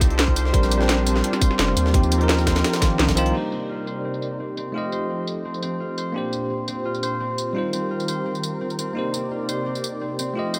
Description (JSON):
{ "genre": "liquid drum and bass", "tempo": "171 BPM", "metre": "4/4", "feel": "straight", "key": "C dorian", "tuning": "A4 = 437 Hz", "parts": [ { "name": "bell-like tine electric piano", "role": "accompaniment", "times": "0.0-10.6 s", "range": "Eb3 to Eb5", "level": "-28 LUFS", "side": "equal", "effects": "none" }, { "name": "warm analog pad", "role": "sustained chords", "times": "0.0-10.6 s", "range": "Bb2 to D5", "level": "-33 LUFS", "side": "equal", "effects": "chorus, sidechain pumping" }, { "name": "concert harp", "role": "arpeggios", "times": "0.0-10.6 s", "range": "G3 to C5", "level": "-32 LUFS", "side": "equal", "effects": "low-pass filter, dub echo" }, { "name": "saturated sub bass", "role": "bass", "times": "0.0-3.3 s", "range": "F1 to Eb2", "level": "-24 LUFS", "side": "equal", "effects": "none" }, { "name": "drum and bass drum kit", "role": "drums", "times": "0.0-10.6 s", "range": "crash cymbal, hi-hat, snare drum, tambourine", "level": "-28 LUFS", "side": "equal", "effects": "low-pass filter on snare, low-pass filter on hats, low-pass filter on perc, low-pass filter on cymbals, low-pass filter on room" }, { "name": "electronic kick drum", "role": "drums", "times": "0.0-3.2 s", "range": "none", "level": "-22 LUFS", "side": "equal", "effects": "none" }, { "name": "jungle sampler-style drum kit", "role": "drums", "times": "0.0-3.3 s", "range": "hi-hat, snare drum", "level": "-30 LUFS", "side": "equal", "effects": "high-pass filter on snare, high-pass filter on hats, high-pass filter on room" } ], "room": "light reverb, digital ambience", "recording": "none", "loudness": "-23 LUFS", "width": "mono", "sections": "0.0-3.3 A section; 3.3-10.6 B section", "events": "drop 0.0-3.3; filter sweep on analog synth pad 3.3-10.6", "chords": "0.0 F9; 0.5 Bb69; 1.9 Cm7; 4.7 F9; 6.2 Bb69; 7.6 Eb69; 9.0 Cm7" }